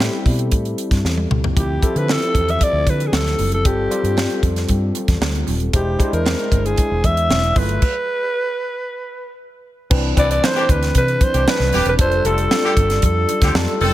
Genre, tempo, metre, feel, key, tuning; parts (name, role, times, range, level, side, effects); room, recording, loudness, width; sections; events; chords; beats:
polished 1980s jazz-funk pop; 115 BPM; 4/4; straight; C major; A4 = 440 Hz
breathy alto saxophone; melody; 0.0-13.8 s; G4 to E5; -20 LUFS; equal
overdriven tine electric piano; accompaniment; 0.0-13.9 s; E3 to B#4; -23 LUFS; left 2 dB; analog chorus
vintage muted fingered electric bass; bass; 0.0-13.9 s; Eb1 to D3; -20 LUFS; equal
tight funk drum kit; drums; 0.0-13.9 s; crash cymbal, hi-hat, kick drum, snare drum, toms; -19 LUFS; equal; gated reverb
congas; percussion; 1.6-13.9 s; -32 LUFS; right 10 dB
warm horn section; second line; 10.6-13.9 s; D3 to A4; -23 LUFS; left 1 dB
small room ambience; -15 LUFS; side -14 dB against mid
0.0-9.9 A section; 9.9-13.9 B section
drum fill 1.0-1.6; stop 7.8-9.9
0.0 Am7; 1.6 Dm11; 3.6 G9sus4; 5.7 E7b13; 7.6 G13; 9.9 Cmaj9; 12.0 F69
0.00 0.52 1.04 | 1.56 2.08 2.61 3.13 | 3.65 4.17 4.69 5.21 | 5.74 6.26 6.78 7.30 | 7.82 8.34 8.86 9.39 | 9.91 10.43 10.95 11.47 | 11.99 12.51 13.03 13.55